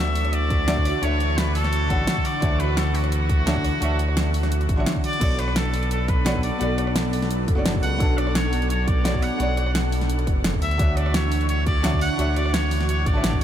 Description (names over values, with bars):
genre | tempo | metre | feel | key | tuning
liquid drum and bass | 172 BPM | 4/4 | straight | B minor | A4 = 443 Hz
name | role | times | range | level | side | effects
trumpet with straight mute | melody | 0.0-13.4 s | F#4 to F#5 | -28 LUFS | equal | analog delay
archtop guitar, miked and amplified | accompaniment | 0.0-13.4 s | D3 to F#5 | -29 LUFS | equal | ping-pong delay
airy breathy pad | sustained chords | 0.0-13.4 s | E3 to C#6 | -29 LUFS | right 1 dB | chorus, phaser
smooth synth bass | bass | 0.0-13.4 s | F#1 to D2 | -23 LUFS | equal | tube saturation
pop drum kit | drums | 0.2-13.4 s | crash cymbal, hi-hat, rim click, snare drum | -28 LUFS | equal | none
electronic kick drum | drums | 0.5-13.4 s | none | -23 LUFS | equal | none
room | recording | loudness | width
light reverb | none | -19 LUFS | side -10 dB against mid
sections
0.0-5.2 A section; 5.2-13.4 A section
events
drop 0.0-5.2, 5.2-13.4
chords
0.0 Dmaj9; 5.2 Bm7; 10.6 Dmaj9